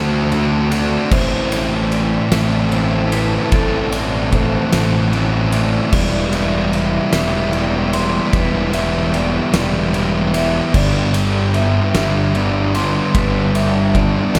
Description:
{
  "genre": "post-rock",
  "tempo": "50 BPM (dotted quarters)",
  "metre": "6/8",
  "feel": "straight",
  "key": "E minor",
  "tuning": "A4 = 440 Hz",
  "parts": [
    { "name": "rich chamber string section", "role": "sustained chords", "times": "0.0-14.4 s", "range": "B3 to A5", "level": "-33 LUFS", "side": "equal", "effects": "none" },
    { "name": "vibraphone with hard mallets", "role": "arpeggios", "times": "0.0-14.4 s", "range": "A4 to C6", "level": "-28 LUFS", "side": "equal", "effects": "tape echo" },
    { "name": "thick fuzz guitar", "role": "riff", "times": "0.0-14.4 s", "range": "G2 to A4", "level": "-20 LUFS", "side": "equal", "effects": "distortion" },
    { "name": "fuzz fingered electric bass", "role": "bass", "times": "0.0-14.4 s", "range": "E1 to D2", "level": "-23 LUFS", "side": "equal", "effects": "overdrive" },
    { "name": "oversized low-tuned drum kit", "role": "drums", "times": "0.3-14.4 s", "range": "crash cymbal, kick drum, ride cymbal, snare drum", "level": "-24 LUFS", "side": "equal", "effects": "none" }
  ],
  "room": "small room ambience",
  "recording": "none",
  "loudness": "-17 LUFS",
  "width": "mono",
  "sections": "0.0-14.4 A section",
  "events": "none",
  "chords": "0.0 D7; 1.1 Am; 5.9 Em7; 10.7 G"
}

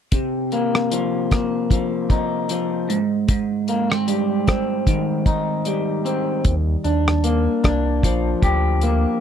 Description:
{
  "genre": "indie pop, bedroom pop",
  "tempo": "76 BPM",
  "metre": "4/4",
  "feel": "swing 55% on 16ths",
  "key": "unclear",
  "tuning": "A4 = 441 Hz",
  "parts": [
    { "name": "electric guitar through a small old amp", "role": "accompaniment", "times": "0.1-9.2 s", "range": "Ab2 to G4", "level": "-20 LUFS", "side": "left 1 dB", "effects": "lush chorus, vibrato effect" },
    { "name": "damped 70s drum kit", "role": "drums", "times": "0.1-9.0 s", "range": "hi-hat, kick drum, rim click", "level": "-20 LUFS", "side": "equal", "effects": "none" },
    { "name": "round analog bass", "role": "bass", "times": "6.4-9.1 s", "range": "Bb1 to Eb2", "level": "-20 LUFS", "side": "equal", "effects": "none" }
  ],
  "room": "little or no reverb",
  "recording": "dry, close 1970s-style studio recording",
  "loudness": "-18 LUFS",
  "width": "side -8 dB against mid",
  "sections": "0.1-9.2 A section",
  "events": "none",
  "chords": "0.1 Cm7; 2.9 Abmaj7; 6.4 Ebmaj9"
}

